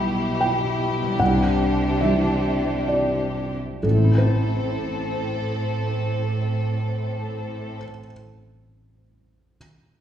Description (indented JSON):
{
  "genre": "cinematic, emotional film score for orchestra",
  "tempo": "62-77 BPM",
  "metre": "3/4",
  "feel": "rubato",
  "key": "A minor",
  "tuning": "A4 = 435 Hz",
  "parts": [
    { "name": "rich studio violin section", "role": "second line", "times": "0.0-7.8 s", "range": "C4 to A4", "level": "-27 LUFS", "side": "left 3 dB", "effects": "none" },
    { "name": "felt-muted upright piano", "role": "accompaniment", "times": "0.0-9.6 s", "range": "A1 to G5", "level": "-23 LUFS", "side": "equal", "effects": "none" },
    { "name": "concert harp", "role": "arpeggios", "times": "0.0-8.0 s", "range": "A2 to C5", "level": "-31 LUFS", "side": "left 2 dB", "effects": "none" },
    { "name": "rich symphonic cello section", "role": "bass", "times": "0.0-7.8 s", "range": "A2 to C3", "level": "-28 LUFS", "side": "right 2 dB", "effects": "none" }
  ],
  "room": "wet recital hall reverb, RT60 1.4 s",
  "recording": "heard from further back in the room",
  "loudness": "-20 LUFS",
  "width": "side -10 dB against mid",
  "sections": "0.0-3.8 A section; 3.8-9.6 B section",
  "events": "slowing down 0.0-3.8",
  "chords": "0.0 Em/B; 1.2 Cadd9; 3.8 Am",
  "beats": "0.41 | 1.20 2.02 2.89 | 3.83 4.78 5.73 | 6.69 7.64 8.59"
}